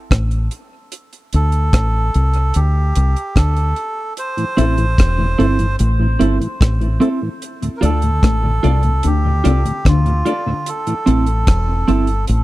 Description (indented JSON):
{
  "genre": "dub reggae",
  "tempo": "74 BPM",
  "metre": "4/4",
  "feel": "straight",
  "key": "D minor",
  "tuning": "A4 = 441 Hz",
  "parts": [
    { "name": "deep dub fingered electric bass", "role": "bass", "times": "0.1-12.4 s", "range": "E1 to D2", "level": "-15 LUFS", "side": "equal", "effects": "none" },
    { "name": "deep reggae drum kit", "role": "drums", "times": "0.1-12.4 s", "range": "hi-hat, kick drum, rim click", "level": "-17 LUFS", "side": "equal", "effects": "none" },
    { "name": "melodica", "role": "melody", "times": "1.4-12.3 s", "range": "F4 to C5", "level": "-23 LUFS", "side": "right 2 dB", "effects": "dub echo" },
    { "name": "mellow tonewheel organ", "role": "accompaniment", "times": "4.4-10.9 s", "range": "D2 to F4", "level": "-23 LUFS", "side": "left 1 dB", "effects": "overdrive, chorus vibrato, slow rotary speaker" },
    { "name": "semi-hollow electric guitar", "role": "accompaniment", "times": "4.6-12.1 s", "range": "C4 to D5", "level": "-20 LUFS", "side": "right 3 dB", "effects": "wide subtle chorus, dub echo" },
    { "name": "mellow electric guitar", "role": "riff", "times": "7.8-10.1 s", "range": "A2 to D3", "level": "-23 LUFS", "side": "left 6 dB", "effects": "spring reverb, dub echo" }
  ],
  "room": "small room reverb",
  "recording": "dry, close 1970s-style studio recording",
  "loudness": "-14 LUFS",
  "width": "side -17 dB against mid",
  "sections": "0.0-12.4 A section",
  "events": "break 0.0-7.4",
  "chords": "0.0 N.C.; 0.9 D5; 4.2 Am; 7.4 Dm; 10.7 Am"
}